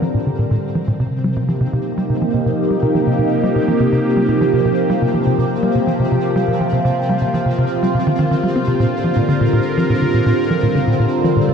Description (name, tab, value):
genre	ambient, sequencer-driven space music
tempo	123 BPM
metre	4/4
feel	straight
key	C minor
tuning	A4 = 440 Hz
part	phased analog pad	sustained chords	0.0-11.5 s	C3 to Bb4	-17 LUFS	equal	phaser, chorus, shimmer reverb
part	tight sequencer bass	riff	0.0-11.5 s	Bb2 to C4	-18 LUFS	equal	analog chorus, ping-pong delay
part	pulsing gated texture	texture	0.0-11.5 s	C4 to C5	-28 LUFS	right 2 dB	chorus, built-in reverb, shimmer reverb
room	wet plate reverb, RT60 2.4 s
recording	echo-heavy mix, cassette tape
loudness	-14 LUFS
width	side -6 dB against mid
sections	0.0-11.5 A section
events	fade-in on synth texture 0.0-11.5; filter sweep on analog synth bass 0.0-11.5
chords	0.0 Bb; 1.0 Cm; 8.8 Bb